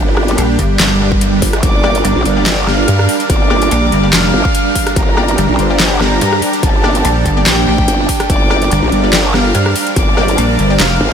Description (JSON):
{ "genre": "heavy wobble dubstep", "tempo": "144 BPM", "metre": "4/4", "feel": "swing 54% on 16ths, half-time", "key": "G minor", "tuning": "A4 = 440 Hz", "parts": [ { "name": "supersaw chords", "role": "sustained chords", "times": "0.0-11.1 s", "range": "G3 to Bb4", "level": "-19 LUFS", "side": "right 2 dB", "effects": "lush chorus, sidechain pumping" }, { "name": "growl bass", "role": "bass", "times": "0.0-11.1 s", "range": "G1 to Bb1", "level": "-15 LUFS", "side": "equal", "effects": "chorus, overdrive" }, { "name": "granular cloud pad", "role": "texture", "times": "0.0-11.1 s", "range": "D4 to C5", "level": "-22 LUFS", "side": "right 4 dB", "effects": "built-in reverb, lush chorus, sidechain pumping" }, { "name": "dubstep drum kit", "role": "drums", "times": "0.2-10.9 s", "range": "handclaps, hi-hat, rim click, snare drum", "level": "-17 LUFS", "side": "left 1 dB", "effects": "overdrive" }, { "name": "pulsing pluck wobble bass", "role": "bass", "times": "0.4-11.0 s", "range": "F1 to G2", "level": "-13 LUFS", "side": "equal", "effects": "chorus, overdrive" }, { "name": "electronic kick drum", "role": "drums", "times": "0.6-10.1 s", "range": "none", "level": "-15 LUFS", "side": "equal", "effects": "overdrive" }, { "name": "swell", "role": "sound effects", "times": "1.1-1.6 s", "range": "none", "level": "-25 LUFS", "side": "right 5 dB", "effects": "none" }, { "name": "warm chamber violin section", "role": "melody", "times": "1.6-11.1 s", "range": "G4 to F6", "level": "-18 LUFS", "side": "left 1 dB", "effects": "analog delay" }, { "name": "orchestra-hit-like synth stab", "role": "stabs", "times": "1.8-10.8 s", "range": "Bb3 to D5", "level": "-23 LUFS", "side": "left 2 dB", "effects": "none" } ], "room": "moderate huge ambient reverb, RT60 7.6 s", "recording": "dreamy mix soaked in reverb", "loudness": "-10 LUFS", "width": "side -7 dB against mid", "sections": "0.0-11.1 A section", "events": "swell 1.1-1.6", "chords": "0.0 Gm" }